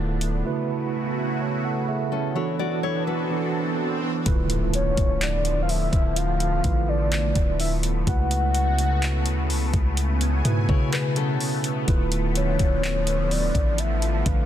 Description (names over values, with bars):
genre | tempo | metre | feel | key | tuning
contemporary R&B | 63 BPM | 4/4 | straight | unclear | A4 = 440 Hz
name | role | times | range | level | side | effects
mellow tine electric piano | accompaniment | 0.0-14.5 s | B2 to A5 | -28 LUFS | right 6 dB | fast stereo tremolo
lush unison pad | sustained chords | 0.0-14.5 s | C#3 to G#5 | -30 LUFS | left 1 dB | chorus, phaser
long sustained 808-style bass | bass | 0.0-14.5 s | D1 to C#3 | -25 LUFS | left 1 dB | none
smooth R&B drum kit | drums | 0.2-14.5 s | handclaps, hi-hat, kick drum | -25 LUFS | equal | none
swell and impact | sound effects | 3.2-8.1 s | none | -34 LUFS | equal | none
nylon-string guitar | arpeggios | 2.1-4.2, 10.7-11.8 s | C#4 to D5 | -30 LUFS | left 11 dB | tape echo
soft octave-layered synth lead | melody | 4.7-14.5 s | C#5 to F#5 | -28 LUFS | left 2 dB | chorus, tremolo, tape echo
room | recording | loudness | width
little or no reverb | dense, heavily limited modern master | -21 LUFS | side -11 dB against mid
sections
0.0-4.3 A section; 4.3-14.5 B section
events
swell 3.2-4.3; impact 4.3-8.1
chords
0.5 A6/C#; 2.4 E9sus4; 4.3 Dm6; 8.1 A6/C#; 11.9 Dm6